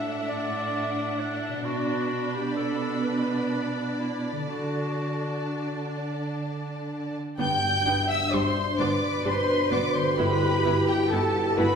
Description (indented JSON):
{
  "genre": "cinematic, emotional film score for orchestra",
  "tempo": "43 BPM (dotted quarters)",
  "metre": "6/8",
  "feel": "rubato",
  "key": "G major",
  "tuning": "A4 = 440 Hz",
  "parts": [
    { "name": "rich studio violin section", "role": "melody", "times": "0.0-11.8 s", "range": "F#5 to G6", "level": "-32 LUFS", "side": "left 3 dB", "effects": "none" },
    { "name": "bright clarinet", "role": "second line", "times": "0.0-5.9 s", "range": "D4 to E5", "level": "-33 LUFS", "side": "equal", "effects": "none" },
    { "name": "warm studio violin section", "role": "second line", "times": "0.0-11.8 s", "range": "G4 to G5", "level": "-33 LUFS", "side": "equal", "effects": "none" },
    { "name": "rich studio viola section", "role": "accompaniment", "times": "0.0-11.7 s", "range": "G3 to E4", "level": "-32 LUFS", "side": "right 1 dB", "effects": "none" },
    { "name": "concert harp", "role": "arpeggios", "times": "0.0-11.8 s", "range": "G2 to D6", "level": "-34 LUFS", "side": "left 3 dB", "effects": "none" },
    { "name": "warm studio cello section", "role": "bass", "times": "0.0-11.8 s", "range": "A2 to B4", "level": "-30 LUFS", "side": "right 3 dB", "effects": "none" },
    { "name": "hollow large flute ensemble", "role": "second line", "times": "7.4-11.8 s", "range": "G4 to G5", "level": "-30 LUFS", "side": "right 2 dB", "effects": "none" },
    { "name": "dark French horn section", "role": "sustained chords", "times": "7.4-11.8 s", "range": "B2 to E4", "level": "-29 LUFS", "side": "left 2 dB", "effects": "none" },
    { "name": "rich studio double bass section", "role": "bass", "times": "7.4-11.7 s", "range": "G1", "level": "-34 LUFS", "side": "right 3 dB", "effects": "none" }
  ],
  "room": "wet recital hall reverb, RT60 1.5 s",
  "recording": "heard from further back in the room",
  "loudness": "-24 LUFS",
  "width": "side -6 dB against mid",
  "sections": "0.0-7.4 A section; 7.4-11.8 B section",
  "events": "none",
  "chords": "0.0 Dadd9/A; 1.7 Bm; 4.5 D; 7.4 G; 10.2 Emadd9/G"
}